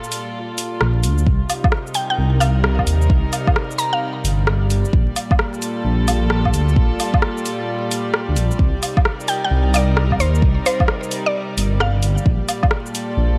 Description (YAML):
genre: future garage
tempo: 131 BPM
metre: 4/4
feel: swing 64% on 16ths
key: unclear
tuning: A4 = 440 Hz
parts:
  - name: warm studio string section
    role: sustained chords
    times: 0.0-13.4 s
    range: Bb2 to D5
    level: -28 LUFS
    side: equal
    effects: sidechain pumping
  - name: deep house drum kit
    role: drums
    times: 0.0-13.1 s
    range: hi-hat, rim click, shaker, woodblock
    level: -24 LUFS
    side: equal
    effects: none
  - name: dark detuned saw bass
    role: bass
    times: 0.8-13.4 s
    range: G1 to Eb2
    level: -20 LUFS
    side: equal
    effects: none
  - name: electronic kick drum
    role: drums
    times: 1.3-12.7 s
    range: none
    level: -19 LUFS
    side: equal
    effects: none
  - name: mallet-like synth pluck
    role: melody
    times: 2.0-4.2, 9.3-12.2 s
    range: C5 to Bb5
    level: -25 LUFS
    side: equal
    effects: chorus, tape echo
room: light reverb, digital ambience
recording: vinyl crackle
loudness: -18 LUFS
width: mono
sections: 0.0-13.4 A section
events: kick drops out 0.8-1.3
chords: 0.0 Gm7/Bb; 1.3 Cm7; 4.9 Gm7/Bb; 8.6 Cm7; 12.3 Gm7/Bb